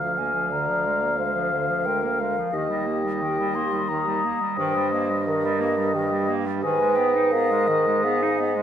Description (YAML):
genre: classical, slow romantic movement for wind quintet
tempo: 88 BPM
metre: 3/4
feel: rubato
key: Eb major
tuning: A4 = 440 Hz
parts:
  - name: mellow hollow silver concert flute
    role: melody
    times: 0.0-8.6 s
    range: Eb5 to C6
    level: -29 LUFS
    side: left 7 dB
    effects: none
  - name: clear oboe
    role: second line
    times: 0.0-8.6 s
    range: Eb5 to F5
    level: -27 LUFS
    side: left 2 dB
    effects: none
  - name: bright clarinet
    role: accompaniment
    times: 0.0-8.6 s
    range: D3 to Eb4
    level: -30 LUFS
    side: right 8 dB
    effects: none
  - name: mellow French horn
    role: accompaniment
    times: 0.0-8.6 s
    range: F4 to D5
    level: -26 LUFS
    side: equal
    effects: none
  - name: warm bassoon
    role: bass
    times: 0.0-8.6 s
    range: D2 to Ab2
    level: -28 LUFS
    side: right 2 dB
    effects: none
room: moderate scoring stage reverb, RT60 1.9 s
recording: none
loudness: -21 LUFS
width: side -9 dB against mid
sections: 0.0-8.6 A section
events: none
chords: 0.0 Bb/D; 0.5 Bb7/D; 2.5 Eb; 4.6 Eb/G; 6.6 Abm